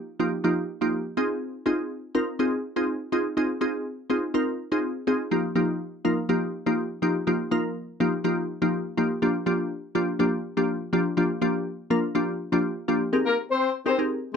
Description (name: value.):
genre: pop.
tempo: 123 BPM.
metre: 4/4.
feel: straight.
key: unclear.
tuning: A4 = 440 Hz.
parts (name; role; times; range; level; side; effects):
glassy wavetable pluck; accompaniment; 0.2-14.2 s; F3 to Bb4; -24 LUFS; equal; chorus.
dark horn section; melody; 13.3-14.0 s; Bb3 to C5; -23 LUFS; left 4 dB; slapback echo.
room: light reverb.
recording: dry, close 1970s-style studio recording.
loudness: -24 LUFS.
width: side -6 dB against mid.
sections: 0.0-13.1 A section; 13.1-14.4 B section.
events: none.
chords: 0.0 Ebadd9/F; 1.2 Fm7; 5.3 Ebadd9/F; 9.2 Gm7/F; 13.1 Abmaj9.